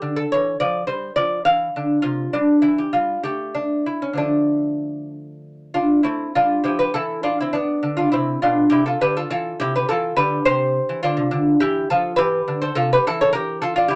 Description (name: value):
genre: classical, baroque-style dance for lute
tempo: 68 BPM (dotted quarters)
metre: 6/8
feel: rubato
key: D minor, A minor from 6.1 s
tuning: A4 = 442 Hz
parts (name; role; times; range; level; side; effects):
- lute; solo; 0.0-14.0 s; B2 to F5; -20 LUFS; equal; none
room: light reverb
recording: none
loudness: -20 LUFS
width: mono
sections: 0.0-6.1 A section; 6.1-14.0 A section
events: none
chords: 0.0 A5; 0.6 Dm/F; 2.3 Em7; 3.3 N.C.; 4.2 Dm; 6.1 Am; 7.8 Dm13; 8.7 Fmaj13/C; 11.3 Dmadd9; 12.2 C; 13.1 A5/E